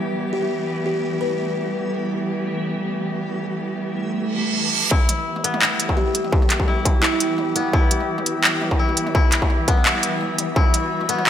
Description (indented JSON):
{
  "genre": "half-time drum and bass",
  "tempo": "170 BPM",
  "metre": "4/4",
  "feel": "swing 54% on 16ths, half-time",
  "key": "E minor",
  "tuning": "A4 = 435 Hz",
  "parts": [
    { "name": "dark symphonic cello section", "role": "sustained chords", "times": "0.0-11.3 s", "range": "E3 to G4", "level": "-26 LUFS", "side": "equal", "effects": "sidechain pumping, low-pass filter" },
    { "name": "backwards swelling texture", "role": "texture", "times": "0.0-11.3 s", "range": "E3 to E4", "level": "-30 LUFS", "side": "equal", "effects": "built-in reverb" },
    { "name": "buzzing kalimba", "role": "melody", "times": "0.3-1.7, 6.0-7.3 s", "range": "E4 to B4", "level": "-27 LUFS", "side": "right 1 dB", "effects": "dub echo" },
    { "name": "reverse cymbal and riser", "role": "sound effects", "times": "4.3-4.9, 10.6-11.3 s", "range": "none", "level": "-22 LUFS", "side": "right 6 dB", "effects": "none" },
    { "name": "koto", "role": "arpeggios", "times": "4.9-11.3 s", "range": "B3 to E4", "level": "-25 LUFS", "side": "left 4 dB", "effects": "low-pass filter, tape echo" },
    { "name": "electronic kick drum", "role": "drums", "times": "4.9-10.6 s", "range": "none", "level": "-18 LUFS", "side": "equal", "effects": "distortion" },
    { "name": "industrial drum kit", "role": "drums", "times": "4.9-11.3 s", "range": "handclaps, hi-hat, toms", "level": "-21 LUFS", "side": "equal", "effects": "high-pass filter on toms, high-pass filter on hats, high-pass filter on snare" }
  ],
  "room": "moderate lush hall reverb, RT60 1.9 s",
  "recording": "none",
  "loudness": "-18 LUFS",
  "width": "side -10 dB against mid",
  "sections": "0.0-4.9 A section; 4.9-11.3 B section",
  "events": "reverse cymbal 4.3-4.9; build-up 4.9-11.3; filter sweep on cello section 4.9-11.3",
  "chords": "0.0 Em"
}